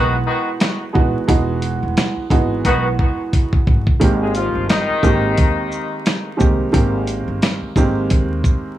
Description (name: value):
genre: hip hop, boom-bap hip-hop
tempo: 88 BPM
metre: 4/4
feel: swing 58% on 16ths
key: unclear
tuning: A4 = 440 Hz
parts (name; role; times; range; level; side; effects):
- warm upright piano; accompaniment; 0.0-8.8 s; Eb3 to G4; -20 LUFS; right 3 dB; high-pass filter, low-pass filter
- mellow horn section; stabs; 0.0-5.7 s; D#3 to Ab4; -21 LUFS; left 3 dB; high-pass filter, low-pass filter, digital delay
- upright bass; bass; 0.0-8.4 s; E1 to Eb2; -22 LUFS; equal; none
- dusty soul sampler-style drum kit; drums; 0.6-8.6 s; hi-hat, kick drum, shaker, snare drum; -16 LUFS; equal; none
room: small room ambience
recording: vinyl crackle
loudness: -15 LUFS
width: side -13 dB against mid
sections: 0.0-4.0 A section; 4.0-8.8 A section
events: drum fill 2.6-4.0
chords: 0.0 Emaj9; 4.0 Abmaj9